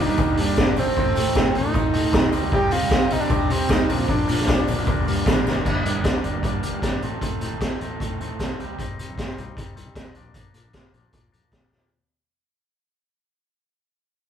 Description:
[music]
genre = indie rock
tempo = 154 BPM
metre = 4/4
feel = straight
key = G minor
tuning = A4 = 443 Hz
[part]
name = overdriven synth lead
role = melody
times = 0.0-4.6 s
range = C4 to G4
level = -23 LUFS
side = right 1 dB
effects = distortion
[part]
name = raw garage guitar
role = riff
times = 0.0-8.8 s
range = G2 to Bb4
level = -28 LUFS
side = right 5 dB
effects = overdrive
[part]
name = twangy electric guitar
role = riff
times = 0.0-11.9 s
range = F3 to Eb4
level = -32 LUFS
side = left 6 dB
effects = none
[part]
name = fuzz fingered electric bass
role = bass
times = 0.0-11.9 s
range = G1 to C3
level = -30 LUFS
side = equal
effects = overdrive
[part]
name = raw garage drum kit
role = drums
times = 0.2-11.8 s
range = crash cymbal, hi-hat, kick drum, snare drum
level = -22 LUFS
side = equal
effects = none
[part]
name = tambourine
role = percussion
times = 0.2-5.5 s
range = none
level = -46 LUFS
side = left 7 dB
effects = none
[sound]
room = light reverb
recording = band playing live in one room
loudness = -19 LUFS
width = side -8 dB against mid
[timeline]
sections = 0.0-5.6 A section; 5.6-11.9 B section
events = drum fill 5.5, 11.7; fade-out 5.6-11.9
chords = 0.0 Gm; 0.8 Adim; 2.3 Cm; 3.9 Bb; 4.9 Gm7; 5.6 Gm; 7.0 Adim; 8.6 Cm; 10.1 Bb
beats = 0.18 0.57 | 0.96 1.35 1.74 2.13 | 2.52 2.91 3.30 3.69 | 4.08 4.47 4.86 5.25 | 5.64 6.04 6.43 6.82 | 7.21 7.60 7.99 8.38 | 8.77 9.16 9.56 9.95 | 10.34 10.73 11.12 11.51

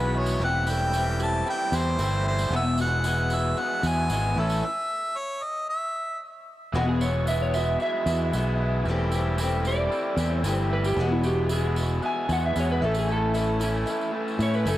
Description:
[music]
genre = folk rock and heartland rock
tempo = 114 BPM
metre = 4/4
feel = straight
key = E major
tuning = A4 = 440 Hz
[part]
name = clear harmonica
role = melody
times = 0.0-6.2 s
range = A4 to A5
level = -28 LUFS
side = equal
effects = cassette tape, analog delay
[part]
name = picked twelve-string acoustic guitar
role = accompaniment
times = 0.0-14.8 s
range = E2 to G4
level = -31 LUFS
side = left 3 dB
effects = cassette tape
[part]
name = raw garage guitar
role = riff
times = 0.0-14.8 s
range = E2 to E4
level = -30 LUFS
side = equal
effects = overdrive, cassette tape
[part]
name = fingered electric bass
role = bass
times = 0.0-14.8 s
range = E1 to A2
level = -26 LUFS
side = equal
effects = none
[part]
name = tambourine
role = percussion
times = 0.3-14.8 s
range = none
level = -40 LUFS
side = right 4 dB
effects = none
[part]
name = electric slide guitar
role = second line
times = 6.8-14.8 s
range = E4 to G#5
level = -29 LUFS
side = right 1 dB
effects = cassette tape
[sound]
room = light reverb, small room ambience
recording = home recording on cassette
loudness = -23 LUFS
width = side -14 dB against mid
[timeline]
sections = 0.0-6.7 A section; 6.7-14.8 B section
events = stop 4.6-6.7; electric slide guitar solo 6.7-14.8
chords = 0.4 C6/E; 2.5 Eadd9; 4.4 A; 5.7 N.C.; 6.7 Eadd9; 8.9 C6/E; 11.0 Eadd9; 12.8 A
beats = | 0.40 0.93 1.46 1.99 | 2.52 3.05 3.58 4.10 | 4.63 5.16 5.69 6.22 | 6.75 7.27 7.80 8.33 | 8.86 9.39 9.92 10.44 | 10.97 11.50 12.03 12.56 | 13.09 13.61 14.14 14.67

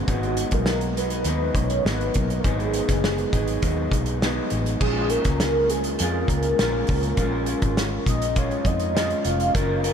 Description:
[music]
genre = indie pop, bedroom pop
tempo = 101 BPM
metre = 4/4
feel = straight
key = unclear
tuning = A4 = 440 Hz
[part]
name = electric guitar through a small old amp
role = accompaniment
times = 0.0-9.9 s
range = G#2 to A#4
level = -27 LUFS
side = equal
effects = wide subtle chorus, warbly pitch drift
[part]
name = warm velvety synth lead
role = melody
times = 0.1-9.8 s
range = F#4 to E#5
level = -26 LUFS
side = equal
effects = tremolo, analog chorus, analog delay
[part]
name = vintage muted fingered electric bass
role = bass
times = 0.1-9.9 s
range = E#1 to E#2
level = -27 LUFS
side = equal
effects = none
[part]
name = loose indie drum kit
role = drums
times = 0.1-9.9 s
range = crash cymbal, hi-hat, kick drum, snare drum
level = -25 LUFS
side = equal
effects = none
[sound]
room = moderate huge ambient reverb, RT60 7.9 s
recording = dreamy mix soaked in reverb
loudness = -20 LUFS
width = side -8 dB against mid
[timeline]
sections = 0.0-4.8 A section; 4.8-9.9 B section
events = soft synth lead solo 4.8-9.9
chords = 0.1 G#m7; 4.8 A#m7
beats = | 0.07 0.67 1.26 1.85 | 2.44 3.04 3.63 4.22 | 4.81 5.41 6.00 6.59 | 7.18 7.77 8.37 8.96 | 9.55

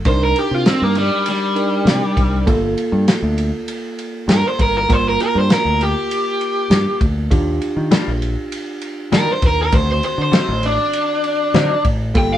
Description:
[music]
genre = straight-eighth soul blues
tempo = 99 BPM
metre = 4/4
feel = swing 54% on 16ths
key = G minor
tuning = A4 = 441 Hz
[part]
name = fingered electric bass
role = bass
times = 0.0-12.4 s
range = G1 to Eb3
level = -20 LUFS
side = equal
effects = none
[part]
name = raw garage guitar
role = melody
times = 0.1-12.4 s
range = G3 to G5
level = -18 LUFS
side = equal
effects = overdrive
[part]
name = bell-like tine electric piano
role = accompaniment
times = 0.1-12.4 s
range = Eb3 to Bb4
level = -24 LUFS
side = right 3 dB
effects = none
[part]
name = warm soul drum kit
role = drums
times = 0.1-12.3 s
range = kick drum, ride cymbal, snare drum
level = -19 LUFS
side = equal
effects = none
[part]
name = direct-recorded clean electric guitar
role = stabs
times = 7.9-11.7 s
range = D3 to Eb4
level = -20 LUFS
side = left 3 dB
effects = harmonic tremolo
[sound]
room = moderate small room reverb, RT60 0.5 s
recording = band playing live in one room, cassette tape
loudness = -14 LUFS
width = side -11 dB against mid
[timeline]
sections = 0.0-12.4 A section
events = overdriven electric guitar solo 0.0-12.4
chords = 0.1 Cm7; 2.5 Gm7; 7.3 Ebmaj7; 9.7 D7b9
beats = | 0.05 0.66 1.26 1.87 | 2.47 3.08 3.68 4.29 | 4.89 5.50 6.10 6.71 | 7.31 7.92 8.52 9.13 | 9.73 10.34 10.94 11.55 | 12.15

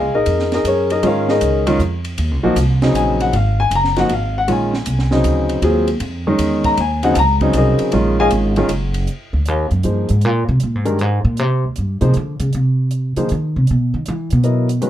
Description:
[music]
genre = modal jazz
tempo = 157 BPM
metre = 3/4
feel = swing 66% on 8ths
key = Eb dorian, F dorian from 9.1 s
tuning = A4 = 436 Hz
[part]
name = dark upright piano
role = accompaniment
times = 0.0-14.9 s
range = Db3 to Bb5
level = -16 LUFS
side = left 1 dB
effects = none
[part]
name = upright bass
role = bass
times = 0.0-14.8 s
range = Gb1 to Fb3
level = -17 LUFS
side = equal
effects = none
[part]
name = compact cocktail drum kit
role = drums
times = 0.3-14.9 s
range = hi-hat, kick drum, ride cymbal, snare drum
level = -28 LUFS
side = right 2 dB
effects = none
[sound]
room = light reverb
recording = dark, warm production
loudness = -14 LUFS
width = side -12 dB against mid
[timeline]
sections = 0.0-9.1 A section; 9.1-14.9 A section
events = upright bass solo 9.1-14.9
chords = 0.0 Eb9sus4; 9.1 Fm9 (rootless); 13.7 Dbm9 (rootless)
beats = 0.26 0.65 | 1.03 1.41 1.80 | 2.18 2.56 2.95 | 3.33 3.71 4.10 | 4.48 4.86 5.25 | 5.63 6.01 6.39 | 6.78 7.16 7.54 | 7.93 8.31 8.69 | 9.07 9.46 9.84 | 10.22 10.61 10.99 | 11.37 11.76 12.14 | 12.52 12.91 13.29 | 13.67 14.05 14.44 | 14.82

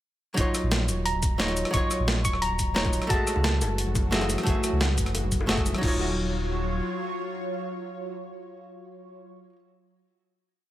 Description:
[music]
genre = liquid drum and bass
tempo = 176 BPM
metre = 4/4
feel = straight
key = Eb minor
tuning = A4 = 440 Hz
[part]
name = archtop guitar, miked and amplified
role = accompaniment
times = 0.3-9.6 s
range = Gb3 to Fb5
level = -30 LUFS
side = equal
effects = digital delay
[part]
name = sub bass with octave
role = bass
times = 0.4-6.8 s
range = Eb1 to Db2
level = -28 LUFS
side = equal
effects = tube saturation
[part]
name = breakbeat sampler-style drum kit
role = drums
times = 0.4-5.9 s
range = cabasa, crash cymbal, hi-hat, rim click, snare drum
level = -29 LUFS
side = equal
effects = none
[part]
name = electronic kick drum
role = drums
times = 0.4-5.9 s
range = none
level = -28 LUFS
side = equal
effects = none
[part]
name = soft round pluck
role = melody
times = 1.1-4.1 s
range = A5 to Db6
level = -31 LUFS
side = equal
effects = chorus, dub echo
[part]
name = lush unison pad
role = sustained chords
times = 3.6-9.3 s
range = Fb3 to Db5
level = -34 LUFS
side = equal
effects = chorus, phaser, sidechain pumping
[part]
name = bongos and congas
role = percussion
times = 3.4-5.8 s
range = none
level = -36 LUFS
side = left 4 dB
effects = none
[sound]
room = light reverb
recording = none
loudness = -23 LUFS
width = side -13 dB against mid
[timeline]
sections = 0.4-5.8 drop; 5.8-8.6 final chord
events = drop 0.4-5.8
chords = 0.4 Ebm9; 3.1 Gbm9; 5.8 Ebm9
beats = | 0.38 0.72 1.06 1.40 | 1.74 2.08 2.42 2.76 | 3.10 3.44 3.78 4.12 | 4.47 4.81 5.15 5.49 | 5.83 6.17 6.51 6.85 | 7.19 7.53 7.88 8.22

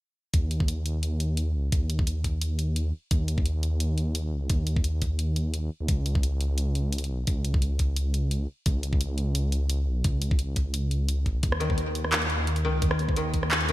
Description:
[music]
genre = half-time drum and bass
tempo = 173 BPM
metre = 4/4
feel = swing 53% on 16ths, half-time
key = unclear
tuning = A4 = 440 Hz
[part]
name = dark detuned saw bass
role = bass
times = 0.3-13.7 s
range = Ab1 to Eb2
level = -26 LUFS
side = equal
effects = tube saturation
[part]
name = drum and bass drum kit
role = drums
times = 0.3-13.7 s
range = handclaps, hi-hat, rim click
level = -30 LUFS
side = equal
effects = studio reverb, gated reverb
[part]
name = electronic kick drum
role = drums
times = 0.3-13.4 s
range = none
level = -25 LUFS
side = equal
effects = studio reverb
[part]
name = koto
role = arpeggios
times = 11.6-13.7 s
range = Eb3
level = -29 LUFS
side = left 1 dB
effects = vintage 12-bit sampler grit, digital delay
[sound]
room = light reverb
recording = bright 1980s-style digital production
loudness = -24 LUFS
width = side -16 dB against mid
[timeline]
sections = 0.3-13.7 A section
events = none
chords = 0.3 N.C.; 5.9 Db5; 11.4 N.C.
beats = | 0.34 0.68 1.03 1.38 | 1.72 2.07 2.42 2.76 | 3.11 3.46 3.80 4.15 | 4.50 4.84 5.19 5.54 | 5.88 6.23 6.58 6.93 | 7.27 7.62 7.97 8.31 | 8.66 9.01 9.35 9.70 | 10.05 10.39 10.74 11.09 | 11.44 11.78 12.13 12.47 | 12.82 13.17 13.52

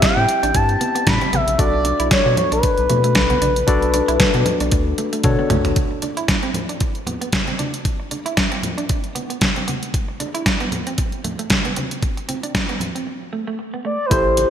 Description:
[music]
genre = early-eighties boogie funk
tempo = 115 BPM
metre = 4/4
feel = swing 56% on 16ths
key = B phrygian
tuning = A4 = 440 Hz
[part]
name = expressive synth lead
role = melody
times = 0.0-5.2, 13.9-14.5 s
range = B4 to B5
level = -19 LUFS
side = left 1 dB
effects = chorus, ping-pong delay
[part]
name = barky tine electric piano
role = accompaniment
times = 0.0-5.8, 14.1-14.5 s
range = C4 to D5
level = -23 LUFS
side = left 4 dB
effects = overdrive
[part]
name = saturated sub bass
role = bass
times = 0.0-5.7, 14.1-14.5 s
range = G#1 to B2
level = -22 LUFS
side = equal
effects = none
[part]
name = detuned 8-bit digital drum machine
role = drums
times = 0.0-14.5 s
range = hi-hat, kick drum, snare drum, toms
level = -20 LUFS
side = equal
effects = gated reverb
[part]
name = congas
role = percussion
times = 0.0-14.5 s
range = none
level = -29 LUFS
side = left 1 dB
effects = none
[part]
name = clean electric guitar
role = riff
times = 0.2-14.0 s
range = A3 to E4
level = -28 LUFS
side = right 5 dB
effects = lush chorus
[sound]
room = moderate lush hall reverb, RT60 2.1 s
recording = bright 1980s-style digital production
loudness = -17 LUFS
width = side -9 dB against mid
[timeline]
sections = 0.0-5.8 A section; 5.8-14.1 B section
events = drum fill 5.2-5.8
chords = 0.0 Am9; 1.6 Bm9; 5.8 Bm; 9.9 D5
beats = 0.03 0.55 1.07 | 1.59 2.11 2.63 3.15 | 3.68 4.20 4.72 5.24 | 5.76 6.29 6.81 7.33 | 7.85 8.37 8.89 9.42 | 9.94 10.46 10.98 11.50 | 12.03 12.55 13.07 13.59 | 14.11

